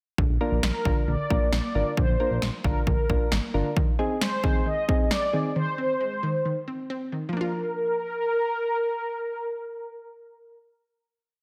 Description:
synth-pop; 134 BPM; 4/4; straight; Bb mixolydian; A4 = 440 Hz
unison pluck; arpeggios; 0.2-10.6 s; D3 to F4; -34 LUFS; equal; tape echo
smooth gliding synth bass; bass; 0.2-3.6 s; G1 to Bb1; -30 LUFS; equal
punchy analog drum machine; drums; 0.2-5.2 s; kick drum, snare drum; -28 LUFS; equal
soft electric-piano-like synth keys; accompaniment; 0.4-5.5 s; C4 to Bb4; -33 LUFS; equal; chorus
mellow synth brass; melody; 0.6-10.6 s; Bb4 to Eb5; -30 LUFS; equal; chorus, tape echo
moderate recital hall reverb, RT60 1.3 s, digital ambience; dense, heavily limited modern master; -26 LUFS; mono
0.2-7.3 verse; 7.3-10.9 final chord
0.2 Bb; 3.8 Ab; 7.3 Bb

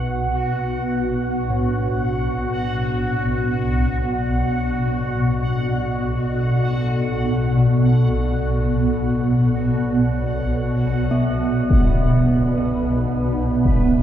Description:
dark ambient drone; free time; B minor; A4 = 438 Hz
dark analog pad; sustained chords; 0.0-14.0 s; B2 to E5; -29 LUFS; left 1 dB; chorus
swarming drone; drone; 0.0-14.0 s; B1 to B2; -20 LUFS; equal; built-in reverb, phaser
bubbling stepped-filter texture; texture; 0.0-14.0 s; B3 to F#5; -27 LUFS; right 1 dB; chorus, built-in reverb
bronze singing bowl; arpeggios; 1.5-14.0 s; A2 to B3; -26 LUFS; right 1 dB; diffuse ambient delay
impact; percussion; 11.7-13.8 s; -20 LUFS; left 1 dB; low-pass filter on sfx
wet huge ambient reverb, RT60 9.1 s; dark, warm production; -18 LUFS; side -10 dB against mid
0.0-14.0 A section
fade-in on analog synth pad 0.0-14.0; fade-out on synth texture 0.0-14.0; filter sweep on synth drone 0.0-14.0
0.0 Bm; 11.7 G69/B (rootless)

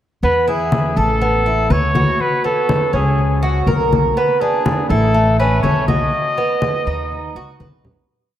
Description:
latin, Cuban son and guajira; 122 BPM; 4/4; straight; A4 = 439 Hz
warm trumpet; melody; 0.2-7.6 s; G#4 to D#5; -20 LUFS; left 1 dB; tape echo
Cuban tres; arpeggios; 0.2-8.1 s; A3 to B4; -19 LUFS; right 1 dB; tape echo
upright bass; bass; 0.2-8.0 s; A1 to E2; -19 LUFS; equal
congas; percussion; 0.2-8.0 s; -21 LUFS; left 2 dB
wet church reverb, RT60 3.6 s; dreamy mix soaked in reverb; -14 LUFS; side -11 dB against mid
0.2-8.1 verse
fade-out 6.1-8.1; drum fill 7.6-8.1
0.2 E; 1.2 Asus2; 2.2 Amaj13; 3.2 F#/C#; 4.2 Bm; 5.1 A; 6.1 B

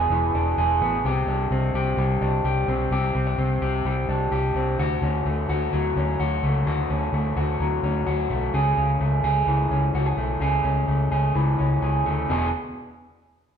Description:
jangly indie pop; 128 BPM; 4/4; straight; A4 = 440 Hz
electric guitar through a small old amp; arpeggios; 0.0-12.5 s; E2 to G#4; -24 LUFS; equal
vintage muted fingered electric bass; bass; 0.0-12.5 s; E1 to D2; -24 LUFS; equal
wet large studio reverb, RT60 1.4 s; band playing live in one room; -21 LUFS; side -8 dB against mid
0.0-12.3 A section; 12.3-13.6 B section
0.0 E7; 1.0 Csus2; 4.8 Dmaj7; 8.5 Amaj7; 12.3 E7

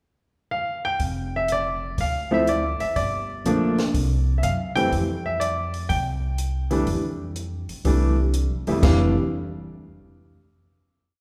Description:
jazz piano trio; 123 BPM; 4/4; swing 67% on 8ths; F major; A4 = 439 Hz
clear baby grand piano; melody; 0.5-9.1 s; F2 to G5; -26 LUFS; equal
upright bass; bass; 1.0-9.1 s; F1 to Gb2; -28 LUFS; equal
compact cocktail drum kit; drums; 1.0-9.0 s; crash cymbal, hi-hat, kick drum, snare drum; -28 LUFS; equal
wet recital hall reverb, RT60 1.7 s; recorded in a church or concert hall; -23 LUFS; mono
0.0-1.0 pickup bar; 1.0-8.8 A section; 8.8-10.8 final chord
0.0 N.C.; 1.0 Dm/F; 2.0 Dm; 3.0 Gm9; 3.9 Csus2; 4.9 Fmaj7sus2; 8.8 N.C.

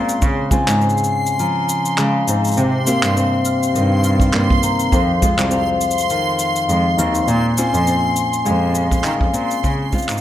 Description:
folktronica; 102 BPM; 4/4; swing 56% on 16ths; F minor; A4 = 439 Hz
vibraphone with medium mallets; second line; 0.0-10.2 s; F5 to F6; -21 LUFS; left 4 dB; auto-pan, tape echo
nylon-string guitar; arpeggios; 0.0-10.2 s; F2 to G4; -21 LUFS; equal; ping-pong delay
muted cello; bass; 0.0-10.2 s; C2 to Eb3; -20 LUFS; right 1 dB; tube saturation
backwards swelling texture; texture; 0.0-10.2 s; C6; -25 LUFS; right 3 dB; built-in reverb
cabasa and handclaps; drums; 0.1-10.2 s; -24 LUFS; left 1 dB
kick drum; drums; 0.2-0.6, 4.2-5.4, 8.9-10.1 s; -19 LUFS; right 1 dB
light reverb, small room reverb; -15 LUFS; side -12 dB against mid
0.0-10.2 A section
fade-out 8.1-10.2
0.2 Dbmaj7; 2.6 Cm7; 4.9 Fm7; 7.3 Bbm9; 9.6 Dbmaj7

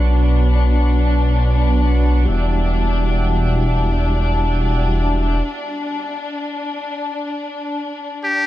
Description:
trip hop; free time; A4 = 437 Hz
tonewheel organ; accompaniment; 0.0-5.4 s; G3 to D5; -25 LUFS; equal; slow rotary speaker, harmonic tremolo, tape echo
rich studio string section; sustained chords; 0.0-8.5 s; D4; -24 LUFS; left 2 dB; low-pass filter
dark detuned saw bass; bass; 0.0-5.4 s; E1 to B1; -16 LUFS; equal
bowed-like drone; texture; 0.0-5.5 s; B3; -29 LUFS; right 3 dB; built-in reverb
trumpet with metal mute; melody; 8.2-8.5 s; G4; -15 LUFS; left 1 dB; vintage 12-bit sampler grit
light reverb, small room ambience; dark, warm production; -16 LUFS; side -14 dB against mid
0.0-8.5 A section
break 5.5-8.5
0.0 Bmadd9; 2.3 Em9; 5.5 N.C.

